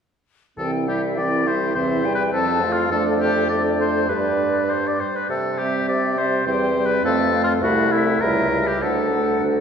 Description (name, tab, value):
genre	quick classical-period movement for wind quintet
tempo	102 BPM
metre	2/4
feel	rubato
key	C major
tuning	A4 = 440 Hz
part	concert flute	melody	0.6-9.5 s	D5 to A5	-28 LUFS	left 3 dB	none
part	warm oboe	second line	0.6-9.4 s	E4 to D5	-23 LUFS	left 3 dB	none
part	warm French horn	accompaniment	0.6-9.6 s	E3 to A3	-26 LUFS	equal	none
part	warm clarinet	accompaniment	0.6-9.6 s	C4 to F4	-26 LUFS	right 5 dB	none
part	mellow bassoon	bass	0.6-9.6 s	C2 to C3	-23 LUFS	right 1 dB	none
room	wet church reverb, RT60 3.8 s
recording	recorded in a church or concert hall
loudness	-18 LUFS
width	side -7 dB against mid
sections	0.6-9.6 A section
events	none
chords	0.6 C; 1.8 C/E; 2.3 F; 2.9 Dm/F; 4.1 G; 5.3 C; 6.5 C/E; 7.0 F; 7.6 Am/C; 8.2 C#dim7; 8.8 D